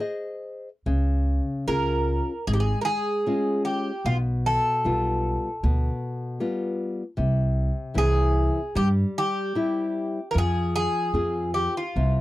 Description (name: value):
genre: fado-style ballad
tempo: 76 BPM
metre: 4/4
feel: rubato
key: unclear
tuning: A4 = 438 Hz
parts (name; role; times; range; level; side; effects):
- Greek bouzouki; melody; 0.0-12.2 s; F4 to Bb4; -26 LUFS; equal; none
- nylon-string guitar; accompaniment; 0.0-12.2 s; B2 to Eb5; -28 LUFS; left 2 dB; none
- upright bass; bass; 0.9-12.2 s; Ab1 to G2; -24 LUFS; right 1 dB; tube saturation
room: little or no reverb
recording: dry, close 1970s-style studio recording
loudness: -22 LUFS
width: side -16 dB against mid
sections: 0.0-12.2 A section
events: none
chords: 0.0 Ab; 0.9 Db; 4.1 G7/B; 7.2 C; 10.3 Fm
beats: 0.01 | 0.86 1.68 2.47 3.26 | 4.05 4.85 5.63 6.40 | 7.17 7.96 8.76 9.56 | 10.35 11.13 11.95